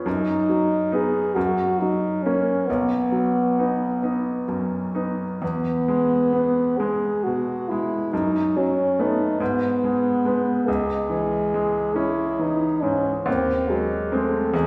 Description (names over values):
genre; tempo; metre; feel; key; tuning
classical, romantic duo for French horn and grand piano; 42-48 BPM (dotted quarters); 6/8; rubato; B major, E major from 5.4 s; A4 = 440 Hz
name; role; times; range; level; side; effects
bright grand piano; accompaniment; 0.0-14.7 s; B1 to D#4; -27 LUFS; equal; none
mellow French horn; melody; 0.1-14.7 s; G#3 to G#4; -24 LUFS; equal; none
room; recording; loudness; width
wet recital hall reverb, RT60 1.4 s; recorded in a church or concert hall; -23 LUFS; mono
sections
0.0-5.4 A section; 5.4-14.7 B section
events
none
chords
0.1 B/F#; 1.4 F#; 2.7 B; 5.4 E; 8.1 B5/F#; 9.4 G#m; 10.7 C#m; 13.3 G#7/D#